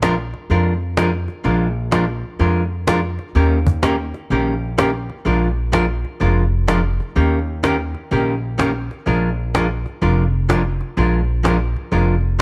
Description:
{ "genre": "country, western swing", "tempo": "126 BPM", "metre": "4/4", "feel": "swing 65% on 8ths", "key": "Bb mixolydian", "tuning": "A4 = 441 Hz", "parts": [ { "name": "archtop guitar, miked and amplified", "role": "accompaniment", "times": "0.0-12.4 s", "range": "Eb3 to Bb4", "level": "-22 LUFS", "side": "equal", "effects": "none" }, { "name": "upright bass", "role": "bass", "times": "0.0-12.4 s", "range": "F1 to F2", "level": "-22 LUFS", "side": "equal", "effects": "none" }, { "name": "cajon", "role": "drums", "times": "0.0-12.0 s", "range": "none", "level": "-24 LUFS", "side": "equal", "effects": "none" } ], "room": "light reverb, studio reverb", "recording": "none", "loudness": "-19 LUFS", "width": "mono", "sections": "0.0-12.4 A section", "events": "none", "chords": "0.0 Bb7; 3.3 Eb7; 5.3 Bb7; 7.2 Eb7; 9.1 Bb7" }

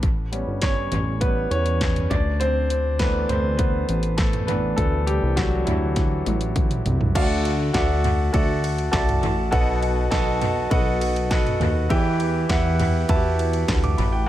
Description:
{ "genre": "piano-driven pop", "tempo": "101 BPM", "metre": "4/4", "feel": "straight", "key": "unclear", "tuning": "A4 = 438 Hz", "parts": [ { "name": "clear concert grand piano", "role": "accompaniment", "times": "0.0-14.3 s", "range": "B2 to D6", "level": "-23 LUFS", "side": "equal", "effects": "analog delay" }, { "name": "chorused synth bass", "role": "bass", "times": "0.0-14.3 s", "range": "G1 to E2", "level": "-24 LUFS", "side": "equal", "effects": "none" }, { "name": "house drum kit", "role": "drums", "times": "0.0-14.1 s", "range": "crash cymbal, handclaps, hi-hat, kick drum, ride cymbal, snare drum, toms", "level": "-24 LUFS", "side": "equal", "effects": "analog delay" } ], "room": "light reverb", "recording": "echo-heavy mix", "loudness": "-19 LUFS", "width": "side -13 dB against mid", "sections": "0.0-7.2 A section; 7.2-14.3 B section", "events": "grand piano solo 0.0-7.2; drum fill 6.0-7.2", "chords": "0.0 A7; 2.1 Dsus2; 7.2 Dadd9; 9.5 B7; 11.9 Em" }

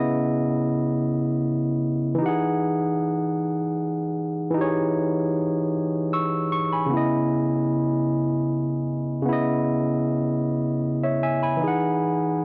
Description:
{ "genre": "R&B", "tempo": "51 BPM (dotted quarters)", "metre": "6/8", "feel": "straight", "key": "unclear", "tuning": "A4 = 438 Hz", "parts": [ { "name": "barky tine electric piano", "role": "solo", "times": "0.0-12.4 s", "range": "C#3 to E6", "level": "-24 LUFS", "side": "equal", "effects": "overdrive, cassette tape" } ], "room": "moderate small room reverb, RT60 0.6 s", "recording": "home recording on cassette", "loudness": "-24 LUFS", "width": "mono", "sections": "0.0-12.4 A section", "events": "none", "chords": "0.0 C#m9; 2.2 Emaj9; 6.9 C#m9; 11.6 Emaj9" }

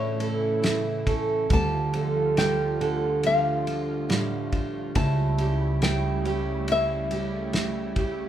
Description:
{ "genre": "acoustic folk-pop ballad", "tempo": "70 BPM", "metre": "4/4", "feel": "straight", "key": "D minor", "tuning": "A4 = 439 Hz", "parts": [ { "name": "nylon-string guitar", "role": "melody", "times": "0.0-8.3 s", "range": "C#5 to A5", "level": "-28 LUFS", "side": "left 2 dB", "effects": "none" }, { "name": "fingerpicked steel-string acoustic guitar", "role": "accompaniment", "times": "0.0-8.3 s", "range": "D2 to A4", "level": "-28 LUFS", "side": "right 2 dB", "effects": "none" }, { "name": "lush unison pad", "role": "sustained chords", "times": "0.0-8.3 s", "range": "C#3 to F4", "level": "-33 LUFS", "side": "right 2 dB", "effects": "chorus, phaser" }, { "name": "upright bass", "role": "bass", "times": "0.0-8.3 s", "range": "C#2 to A2", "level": "-29 LUFS", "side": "right 1 dB", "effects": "none" }, { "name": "cloth-damped thuddy drum kit", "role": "drums", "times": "0.2-8.2 s", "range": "kick drum, ride cymbal, snare drum", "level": "-30 LUFS", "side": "equal", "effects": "none" } ], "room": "moderate large studio reverb, RT60 0.9 s", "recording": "band playing live in one room", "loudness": "-23 LUFS", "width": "side -10 dB against mid", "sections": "0.0-8.3 A section", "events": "none", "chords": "0.0 A; 1.5 Dm; 5.0 A7/C#" }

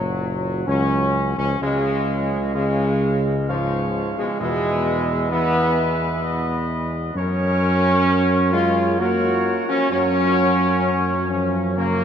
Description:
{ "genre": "classical", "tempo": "65 BPM", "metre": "3/4", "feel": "straight", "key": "F# major", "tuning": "A4 = 436 Hz", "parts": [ { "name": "mellow trumpet section", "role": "melody", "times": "0.0-12.0 s", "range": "F#3 to E#5", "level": "-26 LUFS", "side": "left 2 dB", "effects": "none" }, { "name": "mellow French horn section", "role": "sustained chords", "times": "0.0-12.0 s", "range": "G#2 to A#3", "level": "-26 LUFS", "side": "equal", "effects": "none" }, { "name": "mellow trombone section", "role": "sustained chords", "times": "0.0-12.0 s", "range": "E#3 to F#4", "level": "-21 LUFS", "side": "equal", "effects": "none" }, { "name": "mellow tuba", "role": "bass", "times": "0.0-12.0 s", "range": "F#1 to F#2", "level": "-24 LUFS", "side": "equal", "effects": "none" } ], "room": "wet cathedral reverb, RT60 6.0 s", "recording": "in a vast, echoing space", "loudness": "-18 LUFS", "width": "side -8 dB against mid", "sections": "0.0-12.0 A section", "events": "none", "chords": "0.0 F#; 1.6 C#; 4.4 E; 7.2 F#" }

